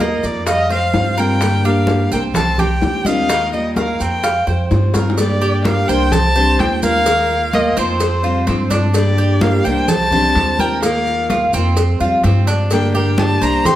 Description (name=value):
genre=latin, Cuban son and guajira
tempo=127 BPM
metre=4/4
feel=straight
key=G minor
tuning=A4 = 440 Hz
part: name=dark violin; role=melody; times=0.0-13.8 s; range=C5 to C6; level=-19 LUFS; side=left 1 dB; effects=none
part: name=flamenco guitar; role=second line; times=0.0-13.8 s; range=F3 to G4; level=-25 LUFS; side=right 3 dB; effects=none
part: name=picked steel-string acoustic guitar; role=accompaniment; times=0.0-13.7 s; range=D3 to Bb4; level=-22 LUFS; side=left 2 dB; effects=none
part: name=Cuban tres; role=arpeggios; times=0.0-13.8 s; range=Bb3 to F5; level=-22 LUFS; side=right 3 dB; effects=none
part: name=upright bass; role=bass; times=0.0-13.8 s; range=C2 to G2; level=-18 LUFS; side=equal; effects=none
part: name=congas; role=percussion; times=0.0-13.8 s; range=none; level=-23 LUFS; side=equal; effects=none
part: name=maracas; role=percussion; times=0.0-13.8 s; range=none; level=-32 LUFS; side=right 4 dB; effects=none
part: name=bongos and cowbell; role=percussion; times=0.2-13.8 s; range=none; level=-24 LUFS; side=left 3 dB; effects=none
room=moderate large studio reverb, RT60 1.1 s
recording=heard from further back in the room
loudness=-13 LUFS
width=side -13 dB against mid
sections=0.0-5.2 A section; 5.2-13.8 B section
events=drum fill 4.9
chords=0.5 Fsus2; 1.4 Gm; 2.4 Csus2; 3.3 Ebsus2; 4.2 Fsus2; 5.2 Gm; 6.1 Csus2; 7.1 Ebsus2; 8.0 Fsus2; 8.9 Gm; 9.9 Csus2; 10.8 Ebsus2; 11.8 Fsus2; 12.7 Gm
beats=0.00 0.47 0.94 | 1.41 1.88 2.35 2.82 | 3.29 3.77 4.24 4.71 | 5.18 5.65 6.12 6.59 | 7.06 7.53 8.00 8.47 | 8.95 9.42 9.89 10.36 | 10.83 11.30 11.77 12.24 | 12.71 13.18 13.65